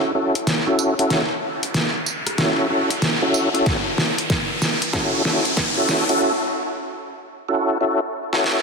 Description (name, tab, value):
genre	glitch hop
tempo	94 BPM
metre	4/4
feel	swing 64% on 16ths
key	F# minor pentatonic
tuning	A4 = 440 Hz
part	tonewheel organ	stabs	0.0-8.6 s	C#4 to A4	-21 LUFS	equal	overdrive, chorus vibrato, slow rotary speaker, sidechain pumping, low-pass filter, digital delay
part	riser	sound effects	0.2-6.2 s	none	-26 LUFS	equal	none
part	dubstep drum kit	drums	0.4-8.6 s	hi-hat, rim click, snare drum, tambourine	-22 LUFS	equal	none
part	electronic kick drum	drums	3.7-5.7 s	none	-26 LUFS	equal	none
room	wet lush hall reverb, RT60 2.8 s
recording	dense, heavily limited modern master, high-pass filter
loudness	-18 LUFS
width	side -4 dB against mid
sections	0.0-8.6 A section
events	build-up 0.0-8.6; drum fill 0.0-6.2, 8.3-8.6; filter sweep on tonewheel organ 0.0-8.6; riser 0.2-6.2; break 6.2-8.6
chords	0.0 F#m7